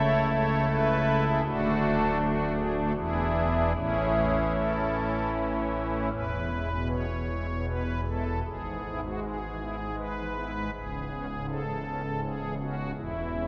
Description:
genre	classical, chorale-style piece for pipe organ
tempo	74-83 BPM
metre	3/4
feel	rubato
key	A major, E major from 6.1 s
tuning	A4 = 441 Hz
part	pipe organ, strings celeste	solo	0.0-13.5 s	C#1 to C#5	-29 LUFS	equal	none
room	wet church reverb, RT60 3.5 s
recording	heard from further back in the room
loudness	-29 LUFS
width	mono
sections	0.0-6.1 A section; 6.1-13.5 B section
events	none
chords	0.0 A/C#; 1.5 D; 3.0 E7; 3.8 A; 6.1 E; 8.5 E/G#; 10.7 C#m7; 13.0 C#m/E

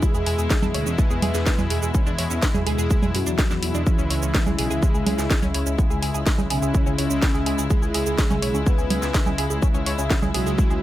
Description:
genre	melodic techno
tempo	125 BPM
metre	4/4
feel	straight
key	C# minor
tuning	A4 = 442 Hz
part	soft octave-layered synth lead	melody	0.0-10.8 s	C#4 to B4	-31 LUFS	left 1 dB	chorus, phaser, digital delay
part	big bright polysynth	second line	0.0-10.8 s	C#3 to B3	-33 LUFS	right 2 dB	none
part	warm studio string section	sustained chords	0.0-10.8 s	B2 to E4	-34 LUFS	left 1 dB	sidechain pumping
part	tight sequenced synth	arpeggios	0.0-10.7 s	G#3 to C#5	-31 LUFS	right 2 dB	chorus, sidechain pumping, digital delay
part	brassy analog pad	stabs	0.0-10.8 s	B2 to E4	-29 LUFS	left 2 dB	chorus, sidechain pumping, digital delay
part	electronic kick drum	drums	0.0-10.7 s	none	-21 LUFS	equal	none
part	house drum kit	drums	0.0-10.8 s	congas, hi-hat, shaker, snare drum	-26 LUFS	right 2 dB	none
part	swelling detuned saw bass	bass	0.1-10.8 s	B1 to F#2	-26 LUFS	equal	sidechain pumping
room	digital ambience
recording	none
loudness	-19 LUFS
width	side -14 dB against mid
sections	0.0-10.8 A section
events	none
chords	0.0 E; 3.9 C#m

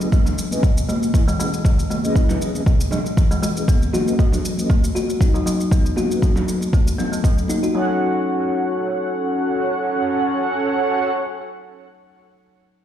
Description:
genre	afro house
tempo	118 BPM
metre	4/4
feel	swing 54% on 16ths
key	F# dorian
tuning	A4 = 439 Hz
part	mellow synth brass	stabs	0.0-11.1 s	C#4 to F#5	-22 LUFS	right 1 dB	chorus, sidechain pumping, ping-pong delay
part	shaker	drums	0.0-7.7 s	none	-32 LUFS	equal	studio reverb
part	congas	percussion	0.0-7.6 s	none	-26 LUFS	right 1 dB	none
part	kalimba	arpeggios	0.1-8.0 s	B2 to F#4	-24 LUFS	left 2 dB	sidechain pumping, low-pass filter, ping-pong delay
part	electronic kick drum	drums	0.1-7.3 s	none	-16 LUFS	equal	studio reverb
room	moderate digital room reverb, RT60 1.3 s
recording	played on a big sound system in a bare room, stone room reverb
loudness	-17 LUFS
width	side -10 dB against mid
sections	0.0-7.7 A section; 7.7-11.8 B section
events	filter sweep on kalimba 0.0-7.7; filter sweep on analog polysynth 0.0-7.7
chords	0.0 C#m7; 3.7 B7; 7.7 F#m

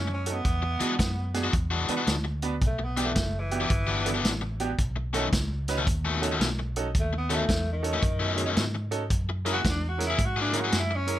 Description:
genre	electric blues shuffle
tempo	111 BPM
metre	4/4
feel	swing 65% on 8ths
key	B mixolydian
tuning	A4 = 441 Hz
part	growling tenor saxophone	melody	0.0-11.2 s	D#3 to F#4	-32 LUFS	equal	plate reverb
part	vintage muted fingered electric bass	bass	0.0-11.2 s	F#1 to G#2	-30 LUFS	equal	none
part	overdriven semi-hollow guitar	riff	0.1-10.9 s	B2 to G#4	-30 LUFS	left 4 dB	none
part	bright upright piano	accompaniment	0.3-11.2 s	B3 to B4	-32 LUFS	right 4 dB	none
part	vintage drum kit	drums	0.3-11.2 s	hi-hat, kick drum, snare drum	-29 LUFS	equal	none
room	moderate club reverb, RT60 0.5 s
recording	none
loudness	-24 LUFS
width	side -13 dB against mid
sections	0.0-11.2 A section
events	tenor saxophone solo 0.0-11.2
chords	0.5 E9; 2.6 Em7; 4.8 B9; 9.1 F#9

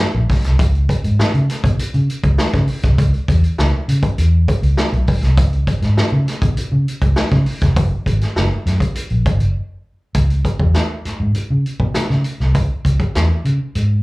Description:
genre	funk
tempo	100 BPM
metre	4/4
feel	straight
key	C# dorian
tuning	A4 = 440 Hz
part	vintage muted fingered electric bass	bass	0.1-14.0 s	E#1 to C#3	-15 LUFS	equal	none
part	vintage drum kit	drums	0.3-13.9 s	hi-hat, kick drum, snare drum	-18 LUFS	equal	none
room	little or no reverb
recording	live gig heard through the venue's PA, club ambience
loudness	-14 LUFS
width	side -22 dB against mid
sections	0.0-10.2 A section; 10.2-14.0 B section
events	break 9.6-10.2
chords	none

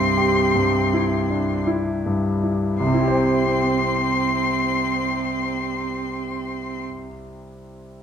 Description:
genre	classical, slow romantic movement for piano trio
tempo	53 BPM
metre	3/4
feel	rubato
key	C major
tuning	A4 = 440 Hz
part	rich violin	melody	0.0-6.8 s	C6	-24 LUFS	left 5 dB	none
part	rich cello	second line	0.0-6.8 s	C4	-26 LUFS	right 6 dB	none
part	warm concert grand piano	accompaniment	0.0-8.0 s	C2 to G5	-22 LUFS	equal	none
room	wet recital hall reverb, RT60 1.3 s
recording	dark, warm production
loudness	-19 LUFS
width	side -8 dB against mid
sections	0.0-2.8 A section; 2.8-6.2 B section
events	slowing down 0.0-2.8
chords	0.0 C

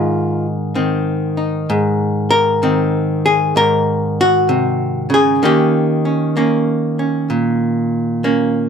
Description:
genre	solo jazz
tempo	64 BPM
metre	4/4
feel	swing 66% on 8ths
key	unclear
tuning	A4 = 440 Hz
part	archtop guitar, miked and amplified	solo	0.0-8.7 s	Ab2 to Bb4	-14 LUFS	equal	none
room	light reverb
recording	close, detailed microphones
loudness	-14 LUFS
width	side -7 dB against mid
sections	0.0-8.7 A section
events	none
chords	0.0 Ab7; 5.4 Eb7

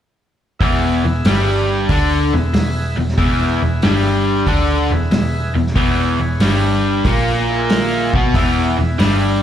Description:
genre	blues rock power trio and southern rock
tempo	93 BPM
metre	4/4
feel	swing 68% on 8ths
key	unclear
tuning	A4 = 440 Hz
part	tonewheel organ	sustained chords	0.6-9.3 s	E4 to E5	-28 LUFS	right 2 dB	slow rotary speaker, overdrive
part	raw garage guitar	riff	0.6-9.4 s	E2 to D4	-17 LUFS	left 1 dB	overdrive, slapback echo
part	vintage muted picked electric bass	bass	0.6-9.4 s	E1 to D2	-19 LUFS	equal	none
part	vintage drum kit	drums	0.6-9.2 s	hi-hat, kick drum, snare drum	-20 LUFS	equal	none
room	little or no reverb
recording	live gig heard through the venue's PA, club reverb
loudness	-14 LUFS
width	side -10 dB against mid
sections	0.6-9.4 A section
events	none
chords	0.6 E

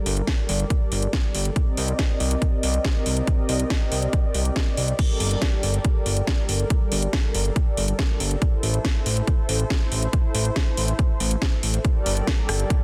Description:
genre	uplifting trance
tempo	140 BPM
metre	4/4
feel	straight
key	G minor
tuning	A4 = 435 Hz
part	lush unison pad	sustained chords	0.0-12.8 s	G3 to Eb5	-31 LUFS	equal	chorus, sidechain pumping
part	fat analog bass	bass	0.1-12.6 s	G1 to C2	-26 LUFS	equal	sidechain pumping
part	house drum kit	drums	0.1-12.8 s	crash cymbal, hi-hat, rim click, snare drum	-30 LUFS	equal	sidechain pumping on hats, sidechain pumping on cymbals
part	electronic kick drum	drums	0.3-12.8 s	none	-24 LUFS	equal	none
room	light reverb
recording	dense, heavily limited modern master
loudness	-23 LUFS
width	mono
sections	0.0-12.8 A section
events	filter sweep on analog synth pad 0.0-12.8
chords	0.0 Gmadd9; 1.6 Cm7; 5.0 Gmadd9; 8.4 Am; 11.8 Gmadd9

